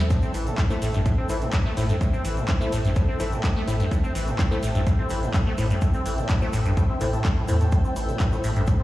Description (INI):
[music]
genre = acid house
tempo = 126 BPM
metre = 4/4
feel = straight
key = A minor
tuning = A4 = 440 Hz
[part]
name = dark analog pad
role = sustained chords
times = 0.0-8.8 s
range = A3 to A5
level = -35 LUFS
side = right 2 dB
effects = lush chorus, sidechain pumping
[part]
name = acid bass, saw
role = riff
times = 0.0-8.8 s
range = G2 to C4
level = -27 LUFS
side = equal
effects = lush chorus, digital delay
[part]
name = saturated sub bass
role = bass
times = 0.0-8.7 s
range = A1 to E2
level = -27 LUFS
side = equal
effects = sidechain pumping
[part]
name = tube shaker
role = percussion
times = 0.0-8.8 s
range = none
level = -47 LUFS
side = right 2 dB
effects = none
[part]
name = granular cloud pad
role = texture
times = 0.0-8.8 s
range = A4 to G5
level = -34 LUFS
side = equal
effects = built-in reverb, sidechain pumping
[part]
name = booming analog drum machine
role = drums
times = 0.1-8.8 s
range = handclaps, hi-hat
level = -35 LUFS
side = equal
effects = small room reverb
[part]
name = electronic kick drum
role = drums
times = 0.1-8.8 s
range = none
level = -22 LUFS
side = equal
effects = overdrive, small room reverb
[part]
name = mellow tine electric piano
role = stabs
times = 0.7-8.4 s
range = E4 to C5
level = -33 LUFS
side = left 2 dB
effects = medium tremolo, digital delay
[sound]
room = light reverb, digital ambience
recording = played on a big sound system in a bare room, stone room reverb, small room ambience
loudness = -21 LUFS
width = side -16 dB against mid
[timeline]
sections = 0.0-8.8 A section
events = filter sweep on acid bass 0.0-8.8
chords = 0.0 Am